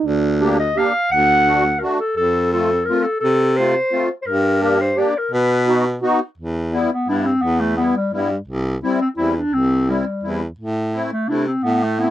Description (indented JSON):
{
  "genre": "alpine folk, alpine dance band",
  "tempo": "171 BPM",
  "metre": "3/4",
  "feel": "swing 54% on 8ths",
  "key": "E minor from 6.4 s",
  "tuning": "A4 = 440 Hz",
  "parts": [
    { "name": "mellow euphonium", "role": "second line", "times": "0.0-0.5 s", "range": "D4", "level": "-20 LUFS", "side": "right 7 dB", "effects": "none" },
    { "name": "clear baritone saxophone", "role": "bass", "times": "0.0-12.1 s", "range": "C2 to C3", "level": "-20 LUFS", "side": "right 1 dB", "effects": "none" },
    { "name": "musette accordion", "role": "accompaniment", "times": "0.4-12.1 s", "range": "G3 to G4", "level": "-20 LUFS", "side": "left 1 dB", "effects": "none" },
    { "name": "mellow clarinet", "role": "melody", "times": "0.6-12.1 s", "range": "G3 to F#5", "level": "-18 LUFS", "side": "left 1 dB", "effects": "none" }
  ],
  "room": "light reverb",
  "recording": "dry, close 1970s-style studio recording",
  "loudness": "-16 LUFS",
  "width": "side -13 dB against mid",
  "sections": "0.0-6.4 A section; 6.4-12.1 B section",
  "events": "none",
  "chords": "0.0 Gm/D; 1.1 D; 2.2 F; 4.3 Gm; 5.3 B; 6.4 Em; 8.5 C; 10.6 Am",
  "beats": "| 0.05 0.40 0.75 | 1.10 1.46 1.81 | 2.17 2.53 2.88 | 3.23 3.58 3.92 | 4.27 4.62 4.97 | 5.32 5.67 6.02 | 6.38 6.73 7.08 | 7.43 7.78 8.13 | 8.48 8.82 9.17 | 9.52 9.87 10.23 | 10.58 10.93 11.28 | 11.63 11.98"
}